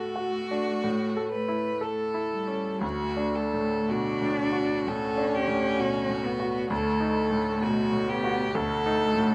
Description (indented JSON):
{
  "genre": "classical, slow romantic movement for piano trio",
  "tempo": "54-67 BPM",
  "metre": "4/4",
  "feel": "rubato",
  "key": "D major",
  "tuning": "A4 = 439 Hz",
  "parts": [
    { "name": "rich violin", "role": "melody", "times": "0.0-9.3 s", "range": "F#4 to B4", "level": "-32 LUFS", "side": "equal", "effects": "none" },
    { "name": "warm cello", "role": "second line", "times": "0.0-9.3 s", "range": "G3 to D4", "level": "-32 LUFS", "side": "equal", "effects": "none" },
    { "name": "bright grand piano", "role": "accompaniment", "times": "0.0-9.3 s", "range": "D2 to A4", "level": "-32 LUFS", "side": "equal", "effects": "none" }
  ],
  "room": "light reverb",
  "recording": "none",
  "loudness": "-27 LUFS",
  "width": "mono",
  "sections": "0.0-2.8 A section; 2.8-9.3 B section",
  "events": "none",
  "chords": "0.0 D/A; 0.8 A; 2.8 D; 6.7 B7/D"
}